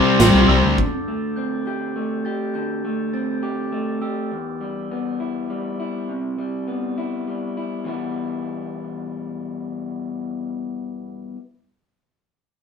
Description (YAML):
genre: post-rock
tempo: 102 BPM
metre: 3/4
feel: straight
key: E minor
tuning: A4 = 440 Hz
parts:
  - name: glockenspiel with soft plastic mallets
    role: arpeggios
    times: 0.0-4.3 s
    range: D6 to A6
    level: -32 LUFS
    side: equal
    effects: analog delay
  - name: crunchy overdriven guitar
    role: riff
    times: 0.0-0.8 s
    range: C3 to C4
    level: -16 LUFS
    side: left 8 dB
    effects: none
  - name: distorted electric guitar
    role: riff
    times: 0.0-0.8 s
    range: C3 to C4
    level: -19 LUFS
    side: right 6 dB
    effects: distortion
  - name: fuzz fingered electric bass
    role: bass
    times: 0.2-0.8 s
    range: A1 to D2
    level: -19 LUFS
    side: equal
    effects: overdrive
  - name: big rock drum kit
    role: drums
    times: 0.2-0.9 s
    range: hi-hat, kick drum, snare drum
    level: -20 LUFS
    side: right 1 dB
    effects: none
  - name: electric guitar through a small old amp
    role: arpeggios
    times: 0.8-11.4 s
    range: E2 to G4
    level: -25 LUFS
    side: left 1 dB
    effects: none
room: moderate studio reverb, RT60 0.7 s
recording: band playing live in one room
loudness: -21 LUFS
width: side -6 dB against mid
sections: 0.8-7.9 A section; 7.9-11.4 B section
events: none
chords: 0.0 Cmaj7; 0.8 D7sus4; 4.3 Em; 6.1 Cmaj7; 7.9 Em